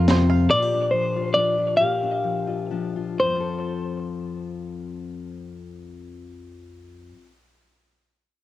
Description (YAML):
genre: folk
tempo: 116-145 BPM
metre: 3/4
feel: straight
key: F major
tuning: A4 = 440 Hz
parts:
  - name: semi-hollow electric guitar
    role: melody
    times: 0.0-7.1 s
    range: C5 to F5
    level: -22 LUFS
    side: equal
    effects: harmonic tremolo, cassette tape, analog delay
  - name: fingerpicked steel-string acoustic guitar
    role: accompaniment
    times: 0.0-7.3 s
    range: F2 to A4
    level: -28 LUFS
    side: left 6 dB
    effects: cassette tape
  - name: bluegrass banjo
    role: arpeggios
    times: 0.0-0.5 s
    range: F4 to F5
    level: -29 LUFS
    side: right 9 dB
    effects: cassette tape
  - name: fingered electric bass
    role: bass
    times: 0.0-0.5 s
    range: F2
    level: -17 LUFS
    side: equal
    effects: none
room: light reverb, small room ambience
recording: home recording on cassette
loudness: -21 LUFS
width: side -14 dB against mid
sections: 0.0-3.2 A section; 3.2-6.3 B section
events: slowing down 0.5-3.2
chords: 0.5 Bb6; 3.2 F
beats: 0.08 | 0.49 0.91 1.33 | 1.77 2.22 2.70 | 3.20 3.72 4.24 | 4.75 5.27 5.79